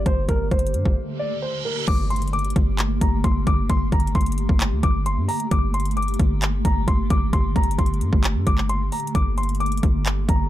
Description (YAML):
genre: hip hop, trap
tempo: 132 BPM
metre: 4/4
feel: half-time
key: G minor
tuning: A4 = 438 Hz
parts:
  - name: granular cloud pad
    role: sustained chords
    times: 0.0-10.5 s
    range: D3 to G4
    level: -28 LUFS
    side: equal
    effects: built-in reverb, low-pass filter
  - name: hard-hitting 808-style bass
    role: bass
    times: 0.0-10.5 s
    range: G1 to G2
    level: -23 LUFS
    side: equal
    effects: none
  - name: dark concert grand piano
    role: melody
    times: 0.1-10.5 s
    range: Bb4 to D6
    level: -28 LUFS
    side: left 1 dB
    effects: low-pass filter
  - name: trap drum kit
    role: drums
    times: 0.1-10.4 s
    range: crash cymbal, handclaps, hi-hat, kick drum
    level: -21 LUFS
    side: equal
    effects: none
  - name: reverse cymbal and impact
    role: sound effects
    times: 1.2-3.7 s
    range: none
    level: -33 LUFS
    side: right 4 dB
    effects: none
room: little or no reverb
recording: dark, warm production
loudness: -19 LUFS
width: side -14 dB against mid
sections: 0.0-1.9 A section; 1.9-10.5 B section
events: break 1.0-1.9; reverse cymbal 1.2-1.9; impact 1.9-3.7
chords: 0.0 Gmadd9